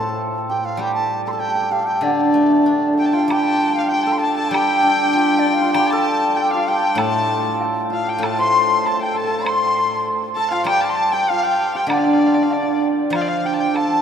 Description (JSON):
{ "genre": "chinese traditional, Chinese chamber ensemble", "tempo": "97 BPM", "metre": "2/4", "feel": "straight", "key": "D yu mode", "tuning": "A4 = 440 Hz", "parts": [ { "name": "bright reedy large dizi", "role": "melody", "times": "0.0-14.0 s", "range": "D5 to C6", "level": "-22 LUFS", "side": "equal", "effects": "none" }, { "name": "hammered dulcimer", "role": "second line", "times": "0.0-14.0 s", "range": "D4 to D5", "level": "-21 LUFS", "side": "right 2 dB", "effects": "none" }, { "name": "steel-string zither", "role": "accompaniment", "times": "0.0-14.0 s", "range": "A2 to G4", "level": "-22 LUFS", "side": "left 1 dB", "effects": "none" }, { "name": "rich erhu", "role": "second line", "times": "3.0-14.0 s", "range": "D5 to C6", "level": "-22 LUFS", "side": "left 3 dB", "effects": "none" }, { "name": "woodblock", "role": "percussion", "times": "3.3-13.9 s", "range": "none", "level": "-33 LUFS", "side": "equal", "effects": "none" } ], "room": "wet cathedral reverb, RT60 5.5 s", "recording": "in a vast, echoing space", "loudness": "-16 LUFS", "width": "side -8 dB against mid", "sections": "0.0-3.3 A section; 3.3-13.1 B section", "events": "none", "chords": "none", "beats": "0.19 | 0.80 1.41 | 2.04 2.66 | 3.29 3.92 | 4.53 5.14 | 5.75 6.37 | 6.98 7.60 | 8.22 8.84 | 9.46 10.07 | 10.67 11.29 | 11.90 12.52 | 13.14 13.76" }